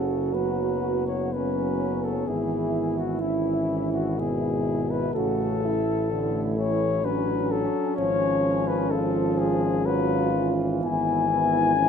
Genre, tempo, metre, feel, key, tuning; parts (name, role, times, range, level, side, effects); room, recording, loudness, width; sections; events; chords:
classical, hymn-like piece for brass band; 63 BPM; 3/4; rubato; A4 = 438 Hz
mellow flugelhorn; melody; 0.0-11.9 s; E4 to G#5; -27 LUFS; left 8 dB
mellow French horn section; second line; 0.0-11.9 s; C#4 to F#4; -29 LUFS; right 8 dB
dark euphonium; accompaniment; 0.0-11.9 s; A3 to D4; -30 LUFS; left 4 dB
warm trombone; accompaniment; 0.0-11.9 s; B2 to F#3; -31 LUFS; right 4 dB
mellow tuba; bass; 0.0-11.9 s; F#1 to A1; -30 LUFS; right 1 dB
moderate recital hall reverb, RT60 1.6 s; -22 LUFS; side -7 dB against mid
0.0-11.9 A section
0.0 F#m; 2.3 E/G#; 5.1 A; 8.0 C#/G#; 10.8 E/G#